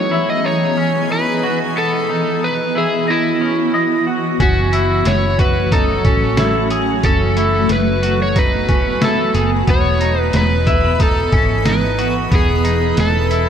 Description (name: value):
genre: dream pop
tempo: 91 BPM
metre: 4/4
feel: straight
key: unclear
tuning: A4 = 441 Hz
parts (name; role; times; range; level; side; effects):
- overdriven slide guitar; melody; 0.0-13.5 s; E4 to D#5; -19 LUFS; equal; digital delay
- shimmering ambient pad; sustained chords; 0.0-13.5 s; E3 to G#5; -20 LUFS; right 1 dB; chorus, built-in reverb
- clean electric guitar; arpeggios; 0.0-13.5 s; B3 to D#5; -21 LUFS; left 2 dB; analog chorus, digital delay
- vintage muted fingered electric bass; bass; 4.4-13.5 s; E1 to A1; -19 LUFS; equal; none
- trip hop sampler-style drum kit; drums; 4.4-13.5 s; hi-hat, kick drum, snare drum; -18 LUFS; equal; none
- drifting glass-harmonics texture; texture; 5.3-7.0, 12.2-13.5 s; B4 to C#5; -29 LUFS; right 1 dB; chorus, built-in reverb, digital delay
room: light reverb, digital ambience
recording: none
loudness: -13 LUFS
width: side -8 dB against mid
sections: 0.0-13.5 A section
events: none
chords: 0.0 Emaj7; 4.4 F#m7; 9.7 Emaj7